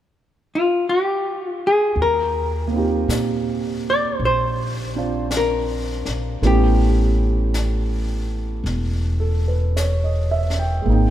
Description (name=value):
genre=jazz ballad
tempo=54 BPM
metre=4/4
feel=swing 69% on 8ths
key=unclear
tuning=A4 = 441 Hz
part: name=hollow-body jazz guitar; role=melody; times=0.6-8.3 s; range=F4 to D5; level=-21 LUFS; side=left 2 dB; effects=none
part: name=upright bass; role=bass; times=2.0-11.1 s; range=E1 to Bb2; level=-21 LUFS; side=equal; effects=none
part: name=jazz brush drum kit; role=drums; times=2.0-11.1 s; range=brushed snare drum, hi-hat, snare drum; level=-33 LUFS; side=left 3 dB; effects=none
part: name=warm concert grand piano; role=accompaniment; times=2.7-11.1 s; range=Ab3 to G5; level=-24 LUFS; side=right 4 dB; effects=none
room=light reverb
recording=none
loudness=-18 LUFS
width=side -12 dB against mid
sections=0.0-2.0 A section; 2.0-11.1 B section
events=none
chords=0.0 N.C.; 2.0 Eb69; 6.4 A9